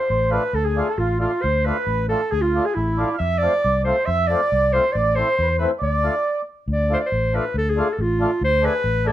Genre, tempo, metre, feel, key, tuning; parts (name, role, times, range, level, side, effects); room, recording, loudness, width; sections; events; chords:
klezmer; 137 BPM; 2/4; straight; D dorian sharp4; A4 = 440 Hz
warm clarinet; melody; 0.0-9.1 s; E4 to E5; -21 LUFS; equal
mellow accordion; second line; 0.0-6.4 s; E4 to F5; -26 LUFS; right 4 dB
fingered electric bass; bass; 0.1-9.1 s; A1 to F2; -23 LUFS; left 1 dB
mellow accordion; accompaniment; 0.3-9.1 s; A3 to G#4; -26 LUFS; left 2 dB
moderate small room reverb, RT60 0.6 s; minimal, uncompressed stereo recording; -18 LUFS; side -12 dB against mid
0.0-6.7 A section; 6.7-9.1 A section
speeding up 0.0-9.1; stop 6.3-6.7
0.0 Dm; 3.2 F; 5.0 Am; 5.8 Dm